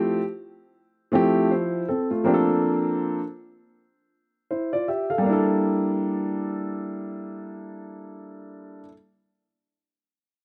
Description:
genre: hip hop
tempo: 80 BPM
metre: 4/4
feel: swing 59% on 16ths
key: G dorian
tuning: A4 = 440 Hz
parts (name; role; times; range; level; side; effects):
- dark grand piano; accompaniment; 0.0-8.9 s; F3 to F5; -25 LUFS; equal; plate reverb
room: wet studio ambience, RT60 0.5 s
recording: dark, warm production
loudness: -24 LUFS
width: mono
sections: 0.0-5.3 A section; 5.3-8.3 B section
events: none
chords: 0.0 Fmaj9; 2.3 Bbmaj9; 5.3 Gm69

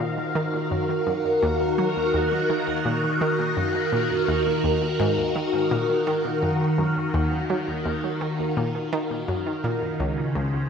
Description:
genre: ambient, sequencer-driven space music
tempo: 84 BPM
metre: 4/4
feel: straight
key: Eb minor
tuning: A4 = 438 Hz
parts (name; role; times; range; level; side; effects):
- phased string machine; sustained chords; 0.0-10.7 s; Db3 to F5; -23 LUFS; equal; ensemble chorus, phaser
- analog pluck; riff; 0.0-10.6 s; Db2 to Gb3; -28 LUFS; equal; chorus, analog delay
room: wet spring reverb, RT60 2.3 s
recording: echo-heavy mix, cassette tape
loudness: -22 LUFS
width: side -6 dB against mid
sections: 0.0-10.7 A section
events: none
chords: 0.0 Ebmadd9; 10.0 Dbmaj7(no3)

